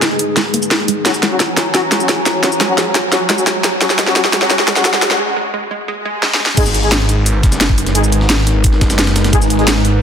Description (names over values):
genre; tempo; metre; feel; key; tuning
dark technical drum and bass; 174 BPM; 4/4; straight; G# minor; A4 = 440 Hz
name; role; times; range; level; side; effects
dark analog pad; sustained chords; 0.0-10.0 s; G#3 to A#5; -21 LUFS; equal; chorus, sidechain pumping
wide unison pluck; arpeggios; 0.0-6.6 s; G#3 to G#4; -24 LUFS; right 2 dB; sidechain pumping, dub echo
drum and bass drum kit; drums; 0.0-9.9 s; crash cymbal, hi-hat, shaker, snare drum; -15 LUFS; equal; overdrive
electronic kick drum; drums; 0.0-9.4 s; none; -15 LUFS; equal; high-pass filter on kick
riser and swell; sound effects; 0.0-6.6 s; none; -27 LUFS; equal; none
warm brass ensemble; stabs; 1.1-9.6 s; F#3 to G#4; -19 LUFS; left 1 dB; low-pass filter, dub echo
snarling distorted saw bass; bass; 6.6-10.0 s; F#1 to G#1; -15 LUFS; equal; distortion, tube saturation
breakbeat sampler-style drum kit; drums; 6.6-9.9 s; hi-hat, snare drum; -24 LUFS; equal; none
room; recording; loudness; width
moderate lush hall reverb, RT60 2.0 s, digital ambience; dense, heavily limited modern master, high-pass filter; -11 LUFS; side -8 dB against mid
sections
0.0-6.6 A section; 6.6-10.0 B section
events
build-up 0.0-6.6; drum fill 0.0-5.2, 6.2-6.6; riser 0.0-5.2; filter sweep on synth arpeggio sound 0.0-6.6; break 5.2-6.6; swell 6.0-6.6; drop 6.6-10.0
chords
0.0 G#m; 1.1 F#; 6.6 G#m